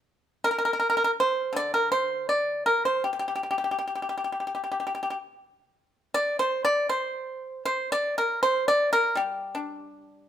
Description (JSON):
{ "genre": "chinese traditional, Chinese solo plucked strings", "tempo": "79 BPM", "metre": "4/4", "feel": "rubato", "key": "G yu mode", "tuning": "A4 = 439 Hz", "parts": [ { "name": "pipa", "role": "solo", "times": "0.4-10.3 s", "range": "D3 to D5", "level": "-24 LUFS", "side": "equal", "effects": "none" } ], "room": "light reverb", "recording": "band playing live in one room", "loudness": "-24 LUFS", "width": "side -10 dB against mid", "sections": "0.0-6.1 A section; 6.1-10.3 B section", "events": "none", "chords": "none" }